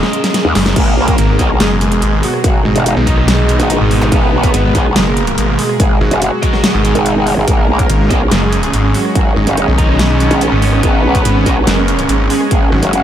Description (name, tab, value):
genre	heavy wobble dubstep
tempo	143 BPM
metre	4/4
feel	half-time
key	G# minor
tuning	A4 = 440 Hz
part	warm chamber string section	sustained chords	0.0-13.0 s	B2 to C#4	-18 LUFS	right 2 dB	sidechain pumping, low-pass filter
part	sludgy distorted guitar	stabs	0.0-11.8 s	A#3 to A#5	-21 LUFS	left 1 dB	overdrive, analog delay
part	dubstep drum kit	drums	0.0-13.0 s	crash cymbal, hi-hat, rim click, snare drum	-20 LUFS	equal	small room reverb
part	growl bass	bass	0.4-13.0 s	F#1 to D#2	-15 LUFS	equal	chorus, overdrive
part	snarling distorted saw bass	bass	0.6-12.8 s	F#1 to B1	-14 LUFS	equal	distortion, overdrive
part	soft supersaw	melody	0.8-13.0 s	D#3 to B4	-19 LUFS	equal	wide subtle chorus, analog delay
part	electronic kick drum	drums	0.8-12.6 s	none	-14 LUFS	equal	small room reverb
part	zap	sound effects	4.0-4.1 s	none	-28 LUFS	right 1 dB	none
room	moderate huge ambient reverb, RT60 7.2 s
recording	dreamy mix soaked in reverb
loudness	-10 LUFS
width	side -10 dB against mid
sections	0.0-13.0 A section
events	drum fill 0.0-0.8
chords	0.0 G#madd9